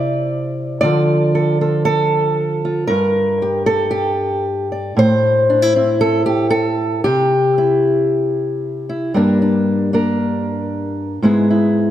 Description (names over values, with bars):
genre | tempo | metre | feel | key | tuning
folk, solo fingerstyle acoustic guitar | 115 BPM | 4/4 | straight | G dorian | A4 = 444 Hz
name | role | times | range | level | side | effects
fingerpicked old ladder-braced acoustic guitar | solo | 0.0-11.9 s | G2 to D5 | -14 LUFS | equal | none
room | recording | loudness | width
moderate concert hall reverb, RT60 2.2 s | none | -14 LUFS | side -12 dB against mid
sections
0.0-9.1 A section; 9.1-11.9 B section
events
none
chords
0.0 Cadd9; 0.8 Dm; 2.9 Gmadd9; 5.0 Am; 7.0 C; 9.1 Gm; 11.2 E/G#